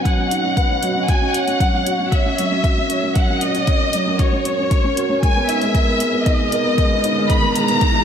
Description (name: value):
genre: piano and strings electronica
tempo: 116 BPM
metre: 4/4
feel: straight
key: unclear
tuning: A4 = 440 Hz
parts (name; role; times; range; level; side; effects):
- warm symphonic violin section; melody; 0.0-8.0 s; C#5 to B5; -20 LUFS; left 2 dB; low-pass filter
- granular cloud pad; sustained chords; 0.0-8.0 s; G#3 to D#5; -27 LUFS; right 2 dB; built-in reverb, sidechain pumping
- dark upright piano; riff; 0.0-8.0 s; F#3 to C#5; -21 LUFS; right 1 dB; none
- electronic hi-hat; drums; 0.1-7.9 s; none; -28 LUFS; left 2 dB; none
- electronic kick drum; drums; 0.1-7.9 s; none; -18 LUFS; equal; none
- riser; sound effects; 6.1-8.0 s; none; -29 LUFS; equal; none
room: moderate lush hall reverb, RT60 2.0 s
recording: none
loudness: -15 LUFS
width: side -8 dB against mid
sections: 0.0-8.0 A section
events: build-up 0.0-8.0; riser 6.1-8.0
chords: 0.0 Badd9; 1.1 F#; 5.2 G#madd9